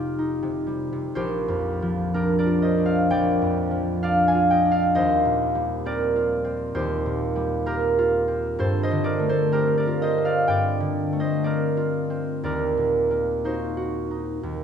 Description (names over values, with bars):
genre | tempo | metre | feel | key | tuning
classical, solo harp piece | 59-67 BPM | 4/4 | rubato | Bb major | A4 = 442 Hz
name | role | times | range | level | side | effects
concert harp | solo | 0.0-14.6 s | F1 to A5 | -21 LUFS | equal | none
room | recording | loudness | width
moderate concert hall reverb, RT60 2.5 s | minimal, uncompressed stereo recording | -21 LUFS | side -7 dB against mid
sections
0.0-1.2 A section; 1.2-14.6 B section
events
none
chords
0.0 F9; 1.2 Bb6; 4.9 Eb69; 8.6 Gm11; 12.5 Ebm6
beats
0.17 | 1.17 2.15 3.09 4.02 | 4.94 5.84 6.75 7.67 | 8.58 9.51 10.48 11.46 | 12.46 13.46 14.45